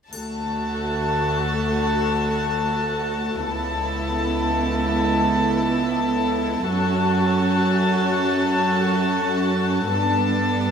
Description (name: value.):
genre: cinematic, emotional film score for orchestra.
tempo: free time.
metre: none.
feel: none.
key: D major.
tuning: A4 = 442 Hz.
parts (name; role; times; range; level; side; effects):
warm symphonic violin section; second line; 0.1-10.7 s; A4 to A5; -24 LUFS; left 3 dB; none.
warm chamber viola section; accompaniment; 0.1-10.7 s; A3 to F#4; -23 LUFS; right 2 dB; none.
rich symphonic cello section; bass; 0.1-10.7 s; C#2 to G2; -24 LUFS; right 2 dB; none.
triangle; percussion; 0.1-1.8 s; none; -42 LUFS; left 3 dB; none.
room: wet scoring stage reverb, RT60 1.9 s.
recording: minimal, uncompressed stereo recording.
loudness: -19 LUFS.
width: side -7 dB against mid.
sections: 0.1-10.7 A section.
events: none.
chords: 0.1 D; 3.5 Aadd9/C#; 6.7 F#m; 9.9 Gadd9.